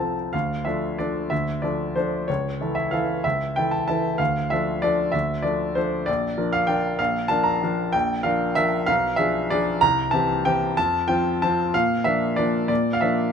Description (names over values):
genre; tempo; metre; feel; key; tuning
classical, piano waltz; 150-206 BPM; 3/4; rubato; D minor; A4 = 440 Hz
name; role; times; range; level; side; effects
clear baby grand piano; solo; 0.0-13.3 s; Bb1 to Bb5; -20 LUFS; equal; none
room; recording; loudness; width
light reverb; close, detailed microphones; -20 LUFS; side -7 dB against mid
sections
0.3-13.3 A section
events
none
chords
0.3 Dm; 2.3 A/C#; 4.2 Dm; 6.1 Bb; 8.9 Bdim7; 9.8 C; 10.8 F; 11.7 Bb